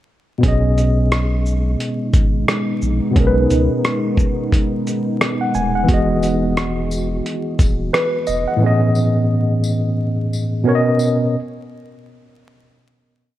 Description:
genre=lo-fi hip hop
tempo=88 BPM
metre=4/4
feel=swing 60% on 16ths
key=B major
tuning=A4 = 440 Hz
part: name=tine electric piano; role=accompaniment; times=0.4-11.4 s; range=A2 to G#5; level=-18 LUFS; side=equal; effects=fast stereo tremolo, cassette tape, low-pass filter
part: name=deep dark ambient pad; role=sustained chords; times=1.7-8.6 s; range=E3 to G#4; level=-24 LUFS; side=right 1 dB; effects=chorus, built-in reverb, low-pass filter
part: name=saturated sub bass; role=bass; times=0.4-8.5 s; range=D#1 to C#2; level=-20 LUFS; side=equal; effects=none
part: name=dusty soul sampler-style drum kit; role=drums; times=0.4-8.5 s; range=hi-hat, kick drum, rim click, shaker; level=-18 LUFS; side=equal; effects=vintage 12-bit sampler grit
part: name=tambourine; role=percussion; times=6.2-11.2 s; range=none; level=-36 LUFS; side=left 5 dB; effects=none
room=light reverb, digital ambience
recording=vinyl crackle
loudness=-15 LUFS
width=side -13 dB against mid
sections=0.4-11.3 A section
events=none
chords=0.4 B69; 5.9 Emaj9; 8.6 Amaj9#11; 10.7 Bmaj7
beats=| 0.43 1.11 1.80 2.48 | 3.16 3.84 4.52 5.21 | 5.89 6.57 7.25 7.93 | 8.61 9.30 9.98 10.66

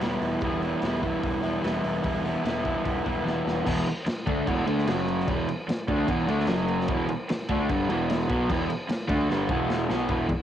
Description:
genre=garage rock duo or trio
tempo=149 BPM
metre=4/4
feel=straight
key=E minor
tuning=A4 = 436 Hz
part: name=raw garage guitar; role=riff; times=0.0-10.3 s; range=E2 to E4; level=-25 LUFS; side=equal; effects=overdrive, cassette tape
part: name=fuzz picked electric bass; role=bass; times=0.0-10.3 s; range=E1 to D2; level=-36 LUFS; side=equal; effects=overdrive
part: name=crunchy breakbeat drum kit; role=drums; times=0.0-10.4 s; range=crash cymbal, hi-hat, kick drum, snare drum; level=-31 LUFS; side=equal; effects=none
room=light reverb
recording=home recording on cassette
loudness=-24 LUFS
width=side -10 dB against mid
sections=0.0-3.7 A section; 3.7-10.1 B section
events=drum fill 3.3-3.7, 9.3-10.1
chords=0.0 Em; 3.7 E5; 4.9 F#5; 5.3 E5; 6.5 F#5; 6.9 Em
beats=0.01 | 0.42 0.82 1.23 1.63 | 2.04 2.44 2.85 3.25 | 3.66 4.06 4.46 4.87 | 5.27 5.67 6.08 6.48 | 6.88 7.28 7.68 8.09 | 8.49 8.89 9.30 9.70 | 10.10

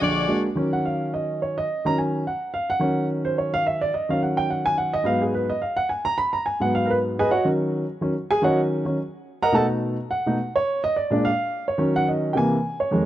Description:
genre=jazz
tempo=214 BPM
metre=4/4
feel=swing 59% on 8ths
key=Eb minor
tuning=A4 = 439 Hz
part: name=warm baby grand piano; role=accompaniment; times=0.0-13.1 s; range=Bb1 to Cb6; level=-21 LUFS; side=right 1 dB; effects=none
room=small room ambience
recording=dry, close 1970s-style studio recording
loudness=-21 LUFS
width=side -13 dB against mid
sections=0.6-13.1 A section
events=grand piano solo 0.6-13.1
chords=0.0 Bb7alt; 0.6 Ebm7; 5.0 Abm7; 7.3 Ebm7; 9.5 B7; 10.7 Bb7; 11.8 Ebm7; 12.3 Caug7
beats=0.00 0.28 | 0.56 0.84 1.12 1.40 | 1.68 1.96 2.24 2.52 | 2.80 3.08 3.36 3.64 | 3.92 4.20 4.48 4.76 | 5.04 5.33 5.61 5.89 | 6.17 6.45 6.73 7.01 | 7.29 7.57 7.85 8.13 | 8.41 8.70 8.98 9.26 | 9.54 9.82 10.10 10.38 | 10.66 10.94 11.22 11.50 | 11.78 12.06 12.34 12.62 | 12.90

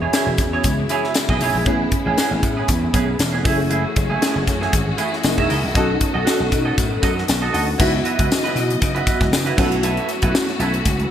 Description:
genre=polished 1980s jazz-funk pop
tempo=117 BPM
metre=4/4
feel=swing 54% on 16ths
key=unclear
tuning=A4 = 439 Hz
part: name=FM electric piano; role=accompaniment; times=0.0-11.1 s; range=A3 to A5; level=-24 LUFS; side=left 2 dB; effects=ensemble chorus
part: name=warm symphonic string section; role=sustained chords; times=0.0-11.1 s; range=C#3 to D#5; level=-27 LUFS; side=left 2 dB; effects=none
part: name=clean electric guitar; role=riff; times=0.0-11.0 s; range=A3 to E5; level=-23 LUFS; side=right 5 dB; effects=lush chorus
part: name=vintage slap bass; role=bass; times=0.0-11.0 s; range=E1 to C#3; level=-23 LUFS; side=equal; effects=none
part: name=crisp fusion drum kit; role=drums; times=0.1-11.1 s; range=crash cymbal, hi-hat, kick drum, snare drum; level=-21 LUFS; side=equal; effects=gated reverb
part: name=tambourine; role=percussion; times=0.1-11.0 s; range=none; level=-33 LUFS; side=left 6 dB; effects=none
room=moderate lush hall reverb, RT60 2.0 s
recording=bright 1980s-style digital production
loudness=-16 LUFS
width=side -10 dB against mid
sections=0.0-7.8 A section; 7.8-11.1 B section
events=FM electric piano fill 7.0-7.8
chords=0.0 E6; 1.7 Amaj9; 3.5 F#m9; 5.2 F#13; 5.8 B7; 7.8 C#m11; 9.6 B7sus4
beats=0.13 0.64 1.15 | 1.67 2.18 2.69 3.20 | 3.71 4.22 4.73 5.24 | 5.75 6.27 6.78 7.29 | 7.80 8.31 8.82 9.33 | 9.84 10.35 10.86

